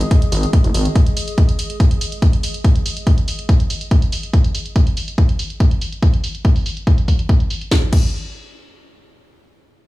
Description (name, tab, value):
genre	driving peak-time techno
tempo	142 BPM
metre	4/4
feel	straight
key	unclear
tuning	A4 = 444 Hz
part	gritty driven synth bass	bass	0.0-0.9 s	F#1 to G#1	-18 LUFS	equal	tube saturation, sidechain pumping
part	techno drum kit	drums	0.0-8.1 s	crash cymbal, hi-hat, snare drum	-26 LUFS	right 1 dB	low-pass filter on hats, low-pass filter on snare, low-pass filter on cymbals, low-pass filter on room
part	warbly tape-like pad	texture	0.0-4.3 s	G#3 to D#6	-32 LUFS	equal	chorus, built-in reverb, phaser, sidechain pumping
part	electronic kick drum	drums	0.1-8.1 s	none	-14 LUFS	equal	none
room	little or no reverb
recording	studio reverb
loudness	-14 LUFS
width	side -19 dB against mid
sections	0.0-7.7 A section; 7.7-9.9 B section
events	fade-out on ambient pad 0.0-4.3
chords	0.0 G#5; 7.7 N.C.